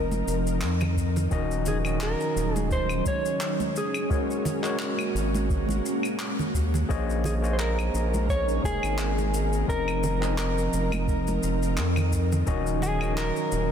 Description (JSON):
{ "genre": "sunset chillout", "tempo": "86 BPM", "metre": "4/4", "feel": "swing 55% on 16ths", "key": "Bb minor", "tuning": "A4 = 439 Hz", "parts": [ { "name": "mellow electric guitar", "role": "melody", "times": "0.0-13.7 s", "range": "Ab4 to Db5", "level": "-31 LUFS", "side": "equal", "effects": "ping-pong delay" }, { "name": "overdriven tine electric piano", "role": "accompaniment", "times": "0.0-13.7 s", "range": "Eb3 to Eb5", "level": "-31 LUFS", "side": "moving between left 8 dB and right 5 dB", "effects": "auto-pan, ping-pong delay" }, { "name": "ethereal airy pad", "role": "sustained chords", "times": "0.0-13.7 s", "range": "F3 to Db5", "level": "-32 LUFS", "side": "equal", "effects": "ensemble chorus, built-in reverb, tremolo" }, { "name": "round analog bass", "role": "bass", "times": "0.0-13.7 s", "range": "Eb1 to F2", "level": "-27 LUFS", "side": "equal", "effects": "none" }, { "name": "shaker, handclaps and claves", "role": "drums", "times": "0.1-13.7 s", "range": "none", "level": "-35 LUFS", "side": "left 2 dB", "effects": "none" }, { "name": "congas", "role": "percussion", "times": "0.1-13.0 s", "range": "none", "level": "-35 LUFS", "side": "right 2 dB", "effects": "none" }, { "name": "electronic kick drum", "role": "drums", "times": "1.0-12.6 s", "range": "none", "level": "-29 LUFS", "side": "equal", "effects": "none" } ], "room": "light reverb, studio ambience", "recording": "dense, heavily limited modern master", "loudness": "-24 LUFS", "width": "side -8 dB against mid", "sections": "0.0-13.7 A section", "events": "none", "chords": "0.0 F7sus4; 1.3 Ebm7; 3.8 Ab9sus4; 6.9 Bbm11; 9.7 F7sus4; 12.5 Ebm7" }